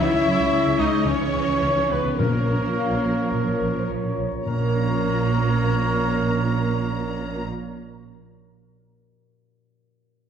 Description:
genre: cinematic, heroic adventure film score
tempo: 108 BPM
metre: 4/4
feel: straight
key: Bb minor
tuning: A4 = 444 Hz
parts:
  - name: rich symphonic violin section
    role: melody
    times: 0.0-7.4 s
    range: Bb4 to Bb5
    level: -34 LUFS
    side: left 4 dB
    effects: none
  - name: clear symphonic violin section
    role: second line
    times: 0.0-7.4 s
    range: Bb4 to Bb5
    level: -34 LUFS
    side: left 5 dB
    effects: none
  - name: dark clarinet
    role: second line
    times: 0.0-7.4 s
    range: Bb4 to Fb5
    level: -32 LUFS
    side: left 2 dB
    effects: none
  - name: warm oboe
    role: second line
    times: 0.0-7.4 s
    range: Bb4 to Fb5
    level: -32 LUFS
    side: right 1 dB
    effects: none
  - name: rich symphonic viola section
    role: accompaniment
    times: 0.0-7.4 s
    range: Bb3 to Fb4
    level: -30 LUFS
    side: right 1 dB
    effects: none
  - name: mellow French horn section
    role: sustained chords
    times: 0.0-7.4 s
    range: Bb3 to Fb4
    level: -30 LUFS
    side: left 2 dB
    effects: none
  - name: warm trombone section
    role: sustained chords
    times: 0.0-7.4 s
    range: Db3 to Eb4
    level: -31 LUFS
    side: right 1 dB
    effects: none
  - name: concert harp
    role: arpeggios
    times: 0.0-8.4 s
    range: Bb2 to Bb5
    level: -31 LUFS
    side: left 6 dB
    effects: none
  - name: mellow trumpet section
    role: stabs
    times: 0.0-7.4 s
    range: Db5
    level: -29 LUFS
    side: right 2 dB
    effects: none
  - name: rich symphonic double bass section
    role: bass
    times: 0.0-7.4 s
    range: Bb1 to Db2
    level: -27 LUFS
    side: right 4 dB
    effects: none
  - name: warm studio cello section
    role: bass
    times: 0.0-7.4 s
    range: Bb2 to Ab3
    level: -29 LUFS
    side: right 3 dB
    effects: none
  - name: timpani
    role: percussion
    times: 2.2-7.9 s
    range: Bb2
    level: -28 LUFS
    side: left 1 dB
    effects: none
  - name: mellow flute section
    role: second line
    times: 2.8-4.5 s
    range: Bb4 to F5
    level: -31 LUFS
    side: left 1 dB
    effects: none
room: wet concert hall reverb, RT60 1.9 s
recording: none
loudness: -20 LUFS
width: side -8 dB against mid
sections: 0.0-4.5 A section; 4.5-6.7 B section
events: none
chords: 0.0 Dbm; 2.2 Bbm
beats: 0.53 1.07 1.63 | 2.19 2.76 3.33 3.90 | 4.46 5.02 5.57 6.12

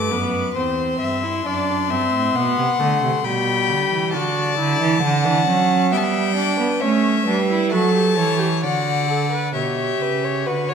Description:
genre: classical, baroque-style fugue for string quartet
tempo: 67 BPM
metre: 3/4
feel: straight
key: G major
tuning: A4 = 435 Hz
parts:
  - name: rich violin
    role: melody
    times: 0.0-10.7 s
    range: E5 to D6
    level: -24 LUFS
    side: left 11 dB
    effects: none
  - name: warm violin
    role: second line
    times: 0.0-10.7 s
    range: A4 to G5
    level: -23 LUFS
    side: left 2 dB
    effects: none
  - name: rich viola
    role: accompaniment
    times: 0.0-10.7 s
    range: G3 to B4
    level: -24 LUFS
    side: right 2 dB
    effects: none
  - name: rich cello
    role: bass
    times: 0.0-10.7 s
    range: E2 to B3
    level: -22 LUFS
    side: right 5 dB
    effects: none
room: wet scoring stage reverb, RT60 1.5 s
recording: none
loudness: -17 LUFS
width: side -7 dB against mid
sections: 0.0-9.5 A section; 9.5-10.7 B section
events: none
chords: 0.0 G; 0.6 C/E; 1.5 D7/F#; 3.2 G/B; 4.1 D; 5.9 G; 6.8 A7; 8.6 D; 9.5 G/B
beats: 0.56 | 1.46 2.35 3.24 | 4.13 5.02 5.91 | 6.81 7.72 8.63 | 9.55 10.46

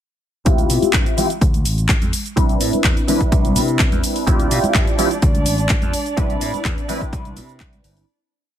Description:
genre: filtered disco house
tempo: 126 BPM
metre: 4/4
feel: straight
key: unclear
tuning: A4 = 435 Hz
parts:
  - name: funky polysynth comp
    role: accompaniment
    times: 0.5-8.1 s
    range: C4 to B4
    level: -21 LUFS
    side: equal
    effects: chorus, phaser, sidechain pumping, low-pass filter
  - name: slap bass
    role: bass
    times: 0.5-8.0 s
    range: G1 to C3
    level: -22 LUFS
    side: equal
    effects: sidechain pumping, low-pass filter
  - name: electronic kick drum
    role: drums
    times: 0.5-7.7 s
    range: none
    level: -18 LUFS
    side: equal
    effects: none
  - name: house drum kit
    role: drums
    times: 0.5-8.1 s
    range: cabasa, handclaps, hi-hat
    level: -23 LUFS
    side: equal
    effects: sidechain pumping on hats, sidechain pumping on perc
  - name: tambourine and congas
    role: percussion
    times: 0.5-8.1 s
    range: none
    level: -30 LUFS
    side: right 3 dB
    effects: sidechain pumping on perc, low-pass filter on perc
  - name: warm chamber violin section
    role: sustained chords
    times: 4.3-8.1 s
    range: D4 to D5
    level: -26 LUFS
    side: right 1 dB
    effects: sidechain pumping, low-pass filter
room: little or no reverb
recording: none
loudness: -15 LUFS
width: side -10 dB against mid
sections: 0.5-8.1 groove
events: filter sweep 0.5-8.1; fade-out 5.5-8.1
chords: 0.5 Dm11; 2.1 Cmaj9; 4.3 Dm11; 5.9 Cmaj9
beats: | 0.46 0.94 1.42 1.89 | 2.37 2.84 3.32 3.80 | 4.27 4.75 5.22 5.70 | 6.18 6.65 7.13 7.61

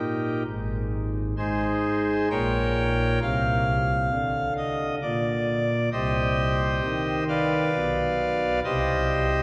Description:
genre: classical, chorale-style piece for pipe organ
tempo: 66 BPM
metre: 3/4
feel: straight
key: C minor from 5.9 s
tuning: A4 = 441 Hz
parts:
  - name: pipe organ, cornet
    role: solo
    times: 0.0-9.4 s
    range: Ab1 to G5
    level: -25 LUFS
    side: equal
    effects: none
room: wet church reverb, RT60 3.7 s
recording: recorded in a church or concert hall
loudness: -25 LUFS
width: mono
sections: 0.0-9.4 A section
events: none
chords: 0.5 Ab; 2.3 Gdim/Bb; 3.2 Cm11; 5.9 Cm; 7.7 Bdim; 8.6 Cm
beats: | 0.46 1.37 2.31 | 3.22 4.12 5.02 | 5.92 6.83 7.73 | 8.63

